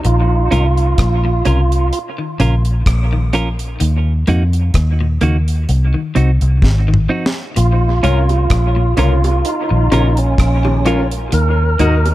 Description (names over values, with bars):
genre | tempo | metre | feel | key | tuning
dub reggae | 64 BPM | 4/4 | swing 55% on 16ths | Bb minor | A4 = 439 Hz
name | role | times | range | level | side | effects
electric guitar at the edge of break-up | arpeggios | 0.0-12.0 s | Ab2 to F3 | -25 LUFS | left 4 dB | dub echo
deep reggae drum kit | drums | 0.0-12.1 s | hi-hat, kick drum, rim click, snare drum, toms | -19 LUFS | equal | none
tonewheel organ | melody | 0.1-12.1 s | Db4 to Bb4 | -19 LUFS | right 3 dB | overdrive, fast rotary speaker, dub echo
vintage muted fingered electric bass | bass | 0.1-12.1 s | Ab1 to F2 | -14 LUFS | equal | none
clean electric guitar | accompaniment | 0.5-11.9 s | Bb3 to Bb4 | -23 LUFS | right 3 dB | dub echo
warm grand piano | stabs | 8.0-12.0 s | Db4 to Eb5 | -23 LUFS | left 6 dB | dub echo
bongos | percussion | 8.3-12.1 s | none | -29 LUFS | right 3 dB | none
room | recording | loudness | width
small room reverb | echo-heavy mix | -12 LUFS | side -16 dB against mid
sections
0.0-7.6 A section; 7.6-12.1 A section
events
break 0.0-7.6; drum fill 6.6-7.6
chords
0.0 Bbm; 3.8 Ebm; 5.7 Cdim; 7.6 Bbm; 11.3 Ebm